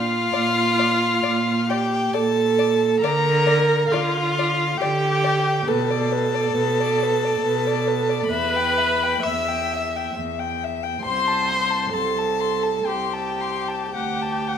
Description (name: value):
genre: classical, slow romantic movement for string quartet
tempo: 54-70 BPM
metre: 3/4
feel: rubato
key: unclear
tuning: A4 = 440 Hz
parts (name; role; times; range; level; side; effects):
- warm violin; second line; 0.0-14.6 s; F5 to E6; -26 LUFS; left 5 dB; none
- rich viola; accompaniment; 0.0-14.6 s; F4 to E5; -22 LUFS; right 2 dB; none
- rich cello; bass; 0.0-14.6 s; C2 to D3; -26 LUFS; right 4 dB; none
- dark violin; melody; 0.3-14.6 s; B4 to C6; -28 LUFS; left 9 dB; none
room: wet recital hall reverb, RT60 1.4 s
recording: none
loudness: -19 LUFS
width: side -8 dB against mid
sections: 0.0-14.6 A section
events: none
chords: 0.3 Bb5; 3.0 Bb/D; 5.7 Bm; 8.3 Em; 11.0 Am/C; 13.9 D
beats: | 0.34 1.25 2.14 | 3.03 3.92 4.80 | 5.67 6.54 7.42 | 8.28 9.23 10.15 | 11.04 11.93 12.87 | 13.93